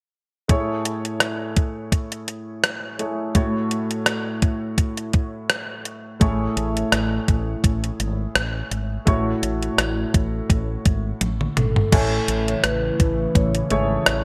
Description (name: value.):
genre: 1980s-style pop.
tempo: 84 BPM.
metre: 4/4.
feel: swing 55% on 16ths.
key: A major.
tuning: A4 = 441 Hz.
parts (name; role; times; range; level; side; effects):
warm concert grand piano; accompaniment; 0.5-14.2 s; A2 to G#5; -28 LUFS; equal; lush chorus.
clean 12-bit digital drum machine; drums; 0.5-14.2 s; crash cymbal, hi-hat, kick drum, rim click, toms; -22 LUFS; equal; gated reverb.
woody fretless electric bass; bass; 6.2-14.2 s; G#1 to A1; -27 LUFS; equal; none.
vibraphone with soft mallets; melody; 11.6-14.2 s; A4 to C#5; -28 LUFS; equal; none.
phased analog pad; sustained chords; 12.5-14.2 s; C#3 to E4; -30 LUFS; equal; phaser, chorus.
room: moderate plate reverb, RT60 2.1 s.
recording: bright 1980s-style digital production.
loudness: -22 LUFS.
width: mono.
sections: 0.5-11.9 A section; 11.9-14.2 B section.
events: drum fill 11.2-11.9.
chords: 0.5 Amaj7; 3.4 F#m7/A; 6.2 Amaj7; 9.1 F#m7/A; 11.9 Amaj7.